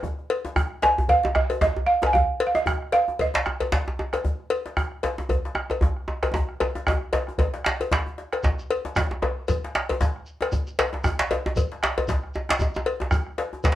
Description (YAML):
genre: west african traditional, West African drum ensemble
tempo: 115 BPM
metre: 4/4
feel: swing 56% on 16ths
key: unclear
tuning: A4 = 443 Hz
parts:
  - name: bombo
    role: percussion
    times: 0.0-13.8 s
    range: none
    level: -26 LUFS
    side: right 1 dB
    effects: none
  - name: djembe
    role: percussion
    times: 0.0-13.8 s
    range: none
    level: -31 LUFS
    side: left 2 dB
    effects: none
  - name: cowbell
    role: percussion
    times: 0.3-13.8 s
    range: none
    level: -27 LUFS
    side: left 4 dB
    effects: none
  - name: balafon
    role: melody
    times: 0.8-4.0 s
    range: Eb5 to Ab5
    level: -21 LUFS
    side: right 2 dB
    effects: none
  - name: djembe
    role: percussion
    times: 0.8-13.8 s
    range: none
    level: -26 LUFS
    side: right 1 dB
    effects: none
  - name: shekere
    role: percussion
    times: 8.4-13.8 s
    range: none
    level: -32 LUFS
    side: equal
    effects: none
room: moderate studio reverb, RT60 0.6 s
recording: worn, warbling old tape, cassette tape, warbly pitch drift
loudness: -22 LUFS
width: side -13 dB against mid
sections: 0.0-8.4 A section; 8.4-13.8 B section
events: drum fill 6.3-8.4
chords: none